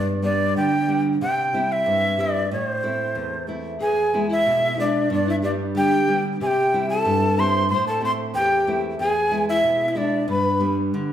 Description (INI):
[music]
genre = andean folk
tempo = 93 BPM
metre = 2/4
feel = straight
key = A minor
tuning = A4 = 441 Hz
[part]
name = breathy bright large quena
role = melody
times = 0.0-10.7 s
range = C5 to C6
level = -22 LUFS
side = equal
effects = none
[part]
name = nylon-string guitar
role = accompaniment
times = 0.0-11.1 s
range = E2 to E4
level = -24 LUFS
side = equal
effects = none
[part]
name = reedy pan flute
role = second line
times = 3.8-10.7 s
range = D4 to C5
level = -25 LUFS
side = left 1 dB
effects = none
[sound]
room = wet large studio reverb, RT60 1.2 s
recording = band playing live in one room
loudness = -19 LUFS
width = side -10 dB against mid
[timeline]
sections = 0.0-3.8 A section; 3.8-11.1 A section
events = none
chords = 0.0 G; 1.2 C; 2.5 Am; 3.8 E; 5.1 G; 6.4 C; 7.7 Am; 9.0 E; 10.3 G